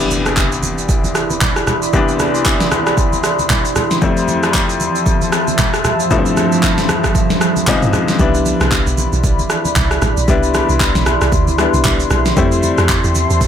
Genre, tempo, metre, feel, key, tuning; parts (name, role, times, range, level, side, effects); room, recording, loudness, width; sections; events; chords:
amapiano; 115 BPM; 4/4; swing 58% on 16ths; C major; A4 = 440 Hz
clear grand piano; accompaniment; 0.0-13.5 s; C2 to E4; -18 LUFS; left 4 dB
deep dark ambient pad; sustained chords; 0.8-13.5 s; F3 to C6; -19 LUFS; right 1 dB; chorus, built-in reverb, sidechain pumping
deep house drum kit; drums; 0.0-13.5 s; handclaps, kick drum, rim click, shaker, snare drum, toms; -16 LUFS; right 1 dB
impact and riser; sound effects; 0.0-1.9, 13.2-13.5 s; -29 LUFS; right 1 dB
congas; percussion; 0.1-13.3 s; -24 LUFS; right 2 dB
deep log drum bass; bass; 8.2-13.5 s; A1 to F2; -17 LUFS; right 1 dB
moderate recital hall reverb, RT60 1.3 s; -12 LUFS; side -9 dB against mid
0.0-13.5 A section
impact 0.0-1.9
0.0 Cmaj9; 4.0 Fmaj7; 7.7 Dbmaj9; 8.2 Cmaj9; 12.4 Fmaj7